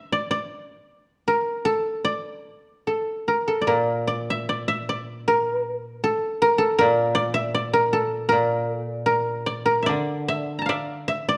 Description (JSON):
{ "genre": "japanese traditional, Japanese chamber music", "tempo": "72-80 BPM", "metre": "2/4", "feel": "rubato", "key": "unclear", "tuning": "A4 = 441 Hz", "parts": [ { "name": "koto", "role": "melody", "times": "0.0-11.4 s", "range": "A4 to Bb5", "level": "-24 LUFS", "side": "equal", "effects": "none" }, { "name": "koto", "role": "accompaniment", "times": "3.7-11.4 s", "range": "Bb2 to D3", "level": "-30 LUFS", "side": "equal", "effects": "none" } ], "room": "moderate recital hall reverb, RT60 1.4 s", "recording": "dark, warm production", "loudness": "-24 LUFS", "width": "mono", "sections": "0.0-3.7 A section; 3.7-11.4 B section", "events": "none", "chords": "none" }